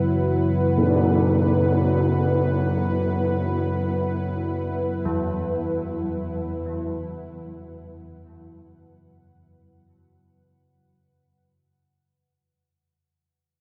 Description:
dark ambient drone; free time; A4 = 440 Hz
dark analog pad; sustained chords; 0.0-11.5 s; F#3 to F#5; -27 LUFS; equal; chorus
old church bells; arpeggios; 0.0-11.5 s; E3 to E4; -35 LUFS; equal; diffuse ambient delay
deep rumbling drone; drone; 0.0-11.6 s; F#2 to C#3; -28 LUFS; equal; built-in reverb
tam-tam; percussion; 0.8-1.0 s; -29 LUFS; equal; low-pass filter on cymbals
moderate huge ambient reverb, RT60 8.3 s; -23 LUFS; mono
0.0-11.5 A section
fade-out 0.1-11.5
0.0 Esus2/F#
free time

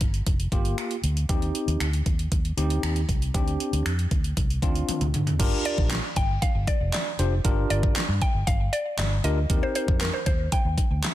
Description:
dance-pop; 117 BPM; 4/4; straight; G minor; A4 = 442 Hz
vintage muted fingered electric bass; bass; 0.0-11.0 s; F1 to D3; -26 LUFS; equal; sidechain pumping
pop drum kit; drums; 0.0-11.1 s; crash cymbal, finger snaps, handclaps, hi-hat, kick drum, snare drum, toms; -25 LUFS; equal; overdrive
tine electric piano; accompaniment; 0.5-10.1 s; Bb3 to C5; -30 LUFS; left 1 dB; medium stereo tremolo, sidechain pumping
mallet-like synth pluck; melody; 5.7-11.1 s; Bb4 to G5; -30 LUFS; equal; chorus, digital delay
digital ambience; dense, heavily limited modern master; -22 LUFS; side -14 dB against mid
0.0-5.4 A section; 5.4-11.1 B section
drum fill 4.9-5.4
0.0 Gm7; 1.3 Eb6; 3.3 D7sus4; 5.4 Gm7; 9.5 Eb6
0.27 0.78 | 1.29 1.80 2.32 2.83 | 3.34 3.86 4.37 4.88 | 5.39 5.91 6.42 6.93 | 7.45 7.96 8.47 8.98 | 9.50 10.01 10.52 11.04

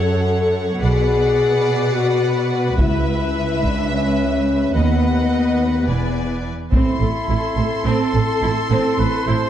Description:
cinematic, epic orchestral film score; 213 BPM (eighths); 7/8; straight; A4 = 440 Hz
rich symphonic violin section; melody; 0.0-9.5 s; E5 to C6; -29 LUFS; left 2 dB
rich symphonic violin section; second line; 0.0-9.5 s; A4 to E5; -28 LUFS; left 2 dB
rich symphonic viola section; accompaniment; 0.0-9.4 s; C4 to B4; -26 LUFS; right 1 dB
mellow French horn section; sustained chords; 0.0-9.5 s; B3 to A4; -21 LUFS; left 3 dB
clear symphonic cello section; bass; 0.0-9.3 s; C#2 to B2; -22 LUFS; right 2 dB
rich studio double bass section; bass; 0.8-9.4 s; E1 to D#2; -22 LUFS; right 3 dB
taiko ensemble; drums; 2.8-7.8 s; -21 LUFS; equal
mellow trumpet; stabs; 6.7-9.5 s; E4 to C5; -23 LUFS; right 1 dB
moderate scoring stage reverb, RT60 1.6 s; dark, warm production; -16 LUFS; side -10 dB against mid
0.0-6.7 A section; 6.7-9.5 B section
0.0 F#m; 0.8 Bm; 2.8 C#m7; 4.8 B/D#; 5.9 E7; 6.7 Am
0.26 0.54 | 0.82 1.10 1.38 1.66 1.94 2.23 2.51 | 2.79 3.07 3.35 3.63 3.92 4.20 4.48 | 4.76 5.04 5.32 5.61 5.89 6.17 6.45 | 6.73 7.01 7.29 7.58 7.86 8.14 8.42 | 8.70 8.98 9.27

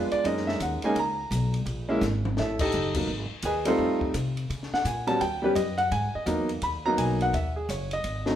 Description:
jazz piano trio; 169 BPM; 4/4; swing 63% on 8ths; G# minor; A4 = 439 Hz
warm grand piano; melody; 0.0-8.4 s; F#3 to B5; -26 LUFS; equal
upright bass; bass; 0.0-8.4 s; F#1 to C#3; -30 LUFS; equal
compact cocktail drum kit; drums; 0.1-8.3 s; crash cymbal, hi-hat, kick drum, ride cymbal, snare drum, toms; -36 LUFS; left 2 dB
moderate large studio reverb, RT60 1.0 s; band playing live in one room; -24 LUFS; side -10 dB against mid
0.0-8.4 A section
drum fill 2.0-2.7; band accent 2.6
0.2 F#69; 1.7 A#7(no3); 2.4 A7#11; 3.1 G#m; 3.8 F7; 4.5 A6b9 (rootless); 5.2 D#aug; 5.9 G#m9; 7.3 Emaj7sus2
| 0.25 0.60 0.96 1.31 | 1.67 2.02 2.37 2.73 | 3.08 3.44 3.79 4.15 | 4.50 4.86 5.21 5.56 | 5.92 6.27 6.62 6.98 | 7.33 7.69 8.04

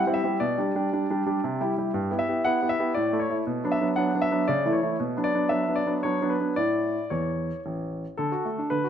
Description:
classical-period piano sonatina; 116 BPM; 3/4; uneven beats; A4 = 439 Hz
clear baby grand piano; solo; 0.0-8.9 s; A1 to F#5; -23 LUFS; equal
moderate recital hall reverb, RT60 1.3 s; close, detailed microphones; -24 LUFS; side -8 dB against mid
0.0-8.2 A section
0.4 G/B; 1.4 C; 1.9 Em/G; 3.0 A; 3.5 Bm; 4.5 A/C#; 5.0 Bm; 6.6 A; 8.2 D
| 0.41 0.93 1.43 | 1.94 2.45 2.95 | 3.46 3.97 4.48 | 5.00 5.51 6.04 | 6.58 7.12 7.66 | 8.19 8.71

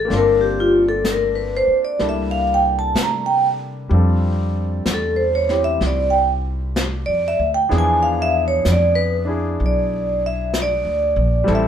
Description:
jazz ballad; 63 BPM; 4/4; swing 66% on 8ths; A4 = 440 Hz
vibraphone with medium mallets; melody; 0.0-11.7 s; F4 to Bb5; -18 LUFS; equal
warm concert grand piano; accompaniment; 0.0-11.7 s; F3 to A4; -26 LUFS; left 1 dB
upright bass; bass; 0.0-11.7 s; G1 to C3; -22 LUFS; equal
jazz brush drum kit; drums; 0.1-11.7 s; brushed snare drum, hi-hat, snare drum; -26 LUFS; left 1 dB
light reverb; band playing live in one room; -16 LUFS; side -9 dB against mid
0.0-11.7 A section
vibraphone solo 0.0-11.7
0.1 Gm11; 2.0 C13; 3.9 F69; 7.7 E7b9
| 0.11 1.05 2.01 2.96 | 3.92 4.87 5.82 6.77 | 7.71 8.66 9.60 10.54 | 11.48

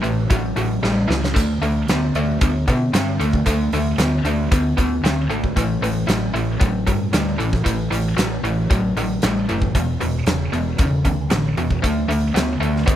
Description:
blues rock power trio and southern rock; 115 BPM; 4/4; straight; A mixolydian; A4 = 443 Hz
overdriven electric guitar; riff; 0.0-13.0 s; E2 to C4; -20 LUFS; equal
hollow-body short-scale fingered electric bass; bass; 0.0-13.0 s; E1 to B2; -24 LUFS; equal
huge arena drum kit; drums; 0.0-13.0 s; hi-hat, kick drum, snare drum, splash cymbal; -22 LUFS; equal
small room reverb; -17 LUFS; side -11 dB against mid
0.0-13.0 A section
drum fill 0.8-1.4
0.0 A; 1.4 D5; 5.6 A5; 9.7 E5; 11.8 D5
0.31 0.83 | 1.36 1.89 2.41 2.94 | 3.46 3.99 4.51 5.04 | 5.56 6.08 6.61 7.13 | 7.65 8.18 8.70 9.22 | 9.74 10.26 10.79 11.31 | 11.83 12.35 12.87

